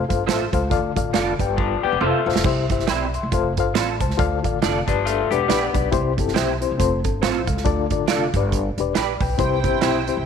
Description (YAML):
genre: uptempo 1960s-style soul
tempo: 138 BPM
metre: 4/4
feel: swing 59% on 8ths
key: G mixolydian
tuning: A4 = 440 Hz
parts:
  - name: reed electric piano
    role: accompaniment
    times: 0.0-10.2 s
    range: G2 to C6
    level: -23 LUFS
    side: left 10 dB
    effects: fast tremolo
  - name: upright bass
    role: bass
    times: 0.0-10.2 s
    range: E1 to D2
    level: -26 LUFS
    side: right 1 dB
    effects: none
  - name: natural country drum kit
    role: drums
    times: 0.1-10.2 s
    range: crash cymbal, hi-hat, kick drum, snare drum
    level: -24 LUFS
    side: right 4 dB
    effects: none
  - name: electric guitar through a small old amp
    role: stabs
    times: 0.3-10.0 s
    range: C4 to D5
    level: -27 LUFS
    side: right 10 dB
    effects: ensemble chorus
  - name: electric guitar through a small old amp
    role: riff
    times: 1.6-5.9 s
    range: F3 to G4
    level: -23 LUFS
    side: left 9 dB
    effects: wide subtle chorus
  - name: rich studio string section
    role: second line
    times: 9.4-10.2 s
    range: E4 to G5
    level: -26 LUFS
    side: right 10 dB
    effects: none
room: light reverb, studio reverb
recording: 1960s-style stereo with parts hard left and right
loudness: -18 LUFS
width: side -7 dB against mid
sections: 0.0-2.4 A section; 2.4-10.3 A section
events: drum fill 1.6-2.4; reed electric piano fill 1.6-2.4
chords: 0.0 F; 0.7 Dm; 1.4 G; 2.0 F; 2.4 C; 3.3 F; 4.2 Dm; 4.8 G; 5.9 C; 6.8 F; 7.7 Dm; 8.3 G; 9.4 C